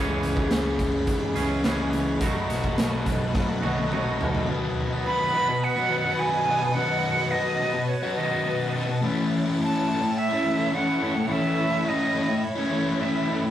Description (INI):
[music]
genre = rock, shoegaze and dream pop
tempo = 106 BPM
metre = 4/4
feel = straight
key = unclear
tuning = A4 = 441 Hz
[part]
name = phased string machine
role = sustained chords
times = 0.0-13.5 s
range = E4 to B5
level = -33 LUFS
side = equal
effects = ensemble chorus, phaser
[part]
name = overdriven electric guitar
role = riff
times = 0.0-13.5 s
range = A2 to F#4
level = -25 LUFS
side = left 2 dB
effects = none
[part]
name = twangy electric guitar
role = riff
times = 0.0-4.5 s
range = B2 to G#4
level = -32 LUFS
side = right 4 dB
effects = none
[part]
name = vintage muted picked electric bass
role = bass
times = 0.0-4.5 s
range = B1 to G#2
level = -31 LUFS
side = equal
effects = none
[part]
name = raw garage drum kit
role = drums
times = 0.2-4.5 s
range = hi-hat, kick drum, snare drum, toms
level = -28 LUFS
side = right 1 dB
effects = none
[part]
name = breathy bright jazz flute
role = melody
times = 5.1-13.4 s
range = C#5 to B5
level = -26 LUFS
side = right 3 dB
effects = none
[sound]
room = wet studio reverb, RT60 0.6 s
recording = rough rehearsal-room recording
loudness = -22 LUFS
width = side -11 dB against mid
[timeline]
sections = 0.0-4.5 A section; 4.5-13.5 B section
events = drum fill 3.4-4.5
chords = 0.0 C#m7; 2.2 B7; 9.0 A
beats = 0.51 1.08 1.65 | 2.22 2.79 3.36 3.92 | 4.49 5.06 5.63 6.19 | 6.76 7.33 7.89 8.46 | 9.03 9.59 10.16 10.73 | 11.29 11.86 12.43 12.99